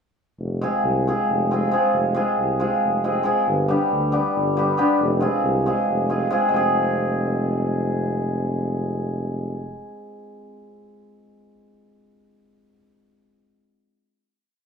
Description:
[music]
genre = balkan folk, Balkan wedding band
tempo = 274 BPM (eighths)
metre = 7/8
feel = straight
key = F dorian sharp4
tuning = A4 = 440 Hz
[part]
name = warm tuba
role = bass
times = 0.4-9.8 s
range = F1 to D2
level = -25 LUFS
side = equal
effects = none
[part]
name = hammered dulcimer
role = accompaniment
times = 0.6-11.1 s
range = G3 to Ab4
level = -21 LUFS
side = equal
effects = none
[sound]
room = wet studio reverb, RT60 0.8 s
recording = band playing live in one room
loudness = -19 LUFS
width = side -6 dB against mid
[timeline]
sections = 0.4-6.5 A section; 6.5-9.6 final chord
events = none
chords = 0.4 Fm; 3.5 G; 5.0 Fm

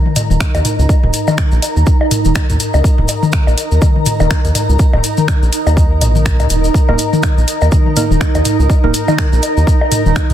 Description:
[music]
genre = minimal techno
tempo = 123 BPM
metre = 4/4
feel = swing 58% on 16ths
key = unclear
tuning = A4 = 438 Hz
[part]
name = granular cloud pad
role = texture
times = 0.0-10.3 s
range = Eb4 to Bb5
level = -19 LUFS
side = right 2 dB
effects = built-in reverb, sidechain pumping
[part]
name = electronic toms and bongos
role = percussion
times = 0.1-10.3 s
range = none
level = -18 LUFS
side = left 3 dB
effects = none
[part]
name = house drum kit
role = drums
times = 0.2-10.3 s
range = finger snaps, hi-hat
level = -21 LUFS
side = equal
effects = soft clipping on snare
[part]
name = maracas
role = percussion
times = 0.2-10.3 s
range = none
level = -26 LUFS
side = left 4 dB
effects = none
[part]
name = round analog bass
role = bass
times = 0.3-10.3 s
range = Eb1 to Eb2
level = -13 LUFS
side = equal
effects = sidechain pumping
[part]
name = electronic kick drum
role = drums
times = 0.4-10.3 s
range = none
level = -13 LUFS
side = equal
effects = none
[part]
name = percussive organ stab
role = stabs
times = 6.9-8.9 s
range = Bb3 to Bb4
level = -24 LUFS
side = right 4 dB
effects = chorus, digital delay
[sound]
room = light reverb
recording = dense, heavily limited modern master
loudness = -10 LUFS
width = side -11 dB against mid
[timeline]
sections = 0.0-10.3 A section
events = none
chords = 0.0 Eb5

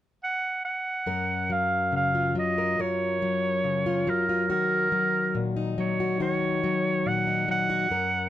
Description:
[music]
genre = folk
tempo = 70 BPM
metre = 4/4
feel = straight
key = F# major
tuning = A4 = 441 Hz
[part]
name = clear clarinet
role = melody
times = 0.2-8.3 s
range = A#4 to F#5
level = -26 LUFS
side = right 2 dB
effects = none
[part]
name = fingerpicked plugged-in steel-string acoustic guitar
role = accompaniment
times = 1.1-8.3 s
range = F#2 to A#4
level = -27 LUFS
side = left 3 dB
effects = none
[sound]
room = light reverb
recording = close, detailed microphones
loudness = -24 LUFS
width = side -12 dB against mid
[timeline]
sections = 0.0-1.1 A section; 1.1-8.3 B section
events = none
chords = 0.0 N.C.; 1.1 F#maj7; 4.5 D#m7

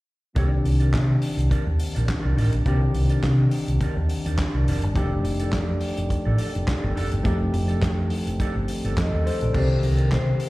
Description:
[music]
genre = disco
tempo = 105 BPM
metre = 4/4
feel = swing 56% on 16ths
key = unclear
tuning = A4 = 440 Hz
[part]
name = mellow French horn section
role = sustained chords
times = 0.3-10.5 s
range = C3 to D5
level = -35 LUFS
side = equal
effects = none
[part]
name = mellow electric guitar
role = accompaniment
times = 0.4-10.3 s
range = Eb4 to D5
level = -36 LUFS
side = right 4 dB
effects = slapback echo
[part]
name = mellow tine electric piano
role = accompaniment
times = 0.4-10.5 s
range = D3 to C5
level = -27 LUFS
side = left 2 dB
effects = none
[part]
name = hollow-body short-scale fingered electric bass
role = bass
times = 0.4-10.3 s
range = F1 to C3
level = -22 LUFS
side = equal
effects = none
[part]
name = warm soul drum kit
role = drums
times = 0.4-10.5 s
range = crash cymbal, handclaps, hi-hat, kick drum, snare drum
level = -28 LUFS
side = equal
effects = none
[part]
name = vibraphone with medium hard mallets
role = melody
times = 9.0-10.5 s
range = Bb4 to Eb5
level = -30 LUFS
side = left 3 dB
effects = slapback echo
[sound]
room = little or no reverb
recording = live gig heard through the venue's PA, recital hall reverb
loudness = -20 LUFS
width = side -19 dB against mid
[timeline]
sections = 0.4-9.5 A section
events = none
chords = 0.4 F13

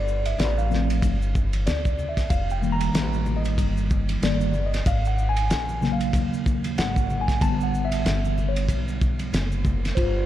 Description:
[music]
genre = hip hop, jazz-hop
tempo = 94 BPM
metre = 4/4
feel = swing 58% on 16ths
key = unclear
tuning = A4 = 440 Hz
[part]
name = mellow tine electric piano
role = accompaniment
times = 0.0-10.3 s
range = Db3 to Bb5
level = -26 LUFS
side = equal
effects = medium stereo tremolo
[part]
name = upright bass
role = bass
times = 0.0-10.3 s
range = F1 to Eb2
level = -26 LUFS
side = equal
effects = none
[part]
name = maracas and congas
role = percussion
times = 0.1-10.0 s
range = none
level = -38 LUFS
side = left 1 dB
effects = none
[part]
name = cloth-damped thuddy drum kit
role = drums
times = 0.3-10.1 s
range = hi-hat, kick drum, ride cymbal, snare drum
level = -26 LUFS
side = equal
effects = none
[sound]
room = light reverb, small room ambience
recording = none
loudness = -21 LUFS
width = side -12 dB against mid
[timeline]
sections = 0.0-10.0 A section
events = tine electric piano solo 0.0-10.0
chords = 0.0 G9sus4; 2.3 F9sus4; 4.9 Ab9sus4; 7.4 A9sus4

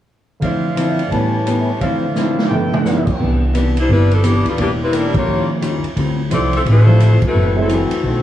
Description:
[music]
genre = jazz, big band swing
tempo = 173 BPM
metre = 4/4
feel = swing 63% on 8ths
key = unclear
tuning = A4 = 435 Hz
[part]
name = archtop guitar, miked and amplified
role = accompaniment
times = 0.4-8.2 s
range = F#2 to G4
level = -22 LUFS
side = left 4 dB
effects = none
[part]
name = warm baby grand piano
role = accompaniment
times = 0.4-7.7 s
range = D2 to G5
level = -21 LUFS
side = right 3 dB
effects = none
[part]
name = clear trumpet section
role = stabs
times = 0.4-3.2 s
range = G4 to D6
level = -24 LUFS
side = equal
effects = none
[part]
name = swinging big-band drum kit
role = drums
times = 0.4-8.1 s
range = crash cymbal, hi-hat, kick drum, ride cymbal, snare drum, toms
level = -22 LUFS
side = right 1 dB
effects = none
[part]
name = upright bass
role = bass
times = 3.2-8.2 s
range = E1 to Eb2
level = -15 LUFS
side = equal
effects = none
[part]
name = edgy saxophone section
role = melody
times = 3.8-8.2 s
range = E3 to E5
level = -19 LUFS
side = left 3 dB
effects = analog delay
[sound]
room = light reverb, small room reverb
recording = small room ambience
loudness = -13 LUFS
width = side -12 dB against mid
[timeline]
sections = 0.4-3.2 A section; 3.2-8.2 B section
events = drum fill 2.2-2.9; band accent 5.1, 7.2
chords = 0.4 Dm9; 1.1 A9; 1.8 Dm9; 2.5 G13; 3.2 Cmaj9; 4.6 Em7b5; 5.3 Eb9; 6.0 Dm11; 7.3 F#m7b5

